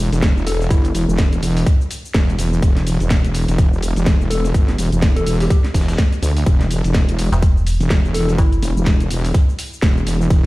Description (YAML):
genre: bass house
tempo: 125 BPM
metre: 4/4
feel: swing 58% on 16ths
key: E minor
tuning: A4 = 440 Hz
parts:
  - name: wobble bass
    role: bass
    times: 0.0-10.5 s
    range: E1 to D2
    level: -17 LUFS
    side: equal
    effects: chorus, tube saturation, sidechain pumping
  - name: dusty soul sampler-style drum kit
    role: drums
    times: 0.1-10.4 s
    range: hi-hat, snare drum, tambourine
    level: -35 LUFS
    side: left 1 dB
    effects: none
  - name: garage drum kit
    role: drums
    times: 0.1-10.4 s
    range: cabasa, hi-hat, snare drum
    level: -25 LUFS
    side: equal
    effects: none
  - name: electronic kick drum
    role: drums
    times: 0.2-10.4 s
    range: none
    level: -14 LUFS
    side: equal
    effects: none
  - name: soft struck synth lead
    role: melody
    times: 0.5-1.2, 4.3-8.9 s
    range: E4 to A4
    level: -27 LUFS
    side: left 2 dB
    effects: chorus, tape echo
  - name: metallic FM bass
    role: bass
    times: 7.3-8.6 s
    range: E1 to G1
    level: -16 LUFS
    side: equal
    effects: tube saturation, sidechain pumping
room: little or no reverb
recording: played on a big sound system in a bare room, stone room reverb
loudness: -14 LUFS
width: side -19 dB against mid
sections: 0.0-10.5 A section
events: none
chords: none